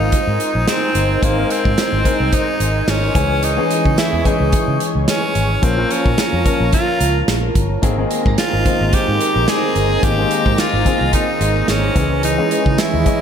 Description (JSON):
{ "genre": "1980s-style pop", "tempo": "109 BPM", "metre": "4/4", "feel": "swing 55% on 16ths", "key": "Ab major", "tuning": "A4 = 441 Hz", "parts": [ { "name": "raspy tenor saxophone", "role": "melody", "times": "0.0-13.2 s", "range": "Bb3 to Ab4", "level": "-20 LUFS", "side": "equal", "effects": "ping-pong delay" }, { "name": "warm grand piano", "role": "accompaniment", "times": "0.0-13.2 s", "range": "Eb3 to Eb5", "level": "-22 LUFS", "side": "left 4 dB", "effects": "none" }, { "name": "lush unison pad", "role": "sustained chords", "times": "0.0-13.2 s", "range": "Fb3 to Bb5", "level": "-24 LUFS", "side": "right 2 dB", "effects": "chorus" }, { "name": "vintage muted fingered electric bass", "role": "bass", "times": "0.0-13.0 s", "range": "G1 to Db3", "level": "-19 LUFS", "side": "equal", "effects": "none" }, { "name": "modern studio drum kit", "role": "drums", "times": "0.1-13.2 s", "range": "hi-hat, kick drum, snare drum", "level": "-19 LUFS", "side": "right 1 dB", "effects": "none" }, { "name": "direct-recorded clean electric guitar", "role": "riff", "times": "7.8-13.2 s", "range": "Eb3 to Db4", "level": "-27 LUFS", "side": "right 5 dB", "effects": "ensemble chorus, ping-pong delay" } ], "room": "wet plate reverb, RT60 2.2 s", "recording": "dreamy mix soaked in reverb", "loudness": "-14 LUFS", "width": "side -8 dB against mid", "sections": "0.0-13.2 A section", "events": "none", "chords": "0.0 Abadd9; 3.2 Dbm; 5.6 Bbm; 7.8 Abadd9; 12.0 Dbm" }